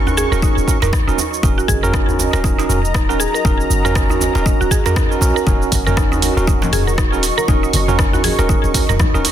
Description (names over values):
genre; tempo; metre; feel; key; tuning
afro house; 119 BPM; 4/4; swing 58% on 16ths; Eb minor pentatonic; A4 = 438 Hz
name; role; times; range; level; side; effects
dark analog pad; sustained chords; 0.0-9.3 s; Gb4 to Db6; -24 LUFS; equal; chorus, sidechain pumping
tine electric piano; stabs; 0.0-9.2 s; Db4 to Bb4; -22 LUFS; right 4 dB; medium stereo tremolo, sidechain pumping, digital delay
warm 808-style bass; bass; 0.0-9.2 s; Eb1 to Bb1; -20 LUFS; left 1 dB; sidechain pumping
mallet-like synth pluck; arpeggios; 0.1-9.2 s; Eb4 to Bb4; -22 LUFS; right 1 dB; chorus, sidechain pumping, digital delay
house drum kit; drums; 0.1-9.3 s; hi-hat, rim click, shaker, toms; -21 LUFS; right 1 dB; soft clipping on snare
djembe; percussion; 0.1-9.3 s; none; -25 LUFS; right 1 dB; none
electronic kick drum; drums; 0.4-9.1 s; none; -17 LUFS; equal; none
congas; percussion; 5.5-9.1 s; none; -26 LUFS; left 4 dB; none
room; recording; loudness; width
little or no reverb; dense, heavily limited modern master; -13 LUFS; side -10 dB against mid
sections
0.0-9.3 A section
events
none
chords
0.0 Ebm7